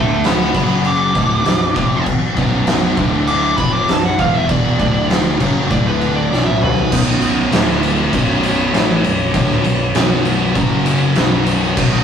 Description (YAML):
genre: stoner and doom metal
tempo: 99 BPM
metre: 4/4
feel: straight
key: B minor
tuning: A4 = 440 Hz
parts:
  - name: fuzz lead guitar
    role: melody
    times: 0.0-6.9 s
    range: B4 to D6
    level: -19 LUFS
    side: equal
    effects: distortion
  - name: mellow French horn section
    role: sustained chords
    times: 0.0-12.0 s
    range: D3 to E5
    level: -30 LUFS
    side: left 3 dB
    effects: none
  - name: sludgy distorted guitar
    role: riff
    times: 0.0-12.0 s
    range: B1 to A3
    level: -21 LUFS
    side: equal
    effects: overdrive
  - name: thick fuzz guitar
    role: riff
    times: 0.0-12.0 s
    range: B1 to A3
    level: -22 LUFS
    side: left 5 dB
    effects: distortion
  - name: thick fuzz guitar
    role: riff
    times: 0.0-12.0 s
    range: B1 to A3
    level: -23 LUFS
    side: right 6 dB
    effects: distortion
  - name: fingered electric bass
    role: bass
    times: 0.0-12.0 s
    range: B0 to A1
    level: -23 LUFS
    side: right 1 dB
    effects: overdrive
  - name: oversized low-tuned drum kit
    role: drums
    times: 0.2-12.0 s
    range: crash cymbal, kick drum, ride cymbal, snare drum, toms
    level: -16 LUFS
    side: equal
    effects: none
room: moderate stone room reverb, RT60 1.3 s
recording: rough rehearsal-room recording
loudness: -13 LUFS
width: side -8 dB against mid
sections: 0.0-6.9 A section; 6.9-12.0 B section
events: lead electric guitar solo 0.0-6.9; drum fill 6.3-6.9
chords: 0.0 D5; 0.6 F#5; 1.2 Bm; 3.0 D5; 3.6 B5; 4.2 E5; 4.8 D5; 5.4 B5; 5.7 D5; 6.3 B5; 7.5 D5; 8.1 Bm; 10.6 F#5; 11.2 B5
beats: 0.25 0.85 1.46 | 2.06 2.67 3.28 3.88 | 4.49 5.09 5.70 6.31 | 6.91 7.52 8.13 8.73 | 9.34 9.95 10.55 11.16 | 11.77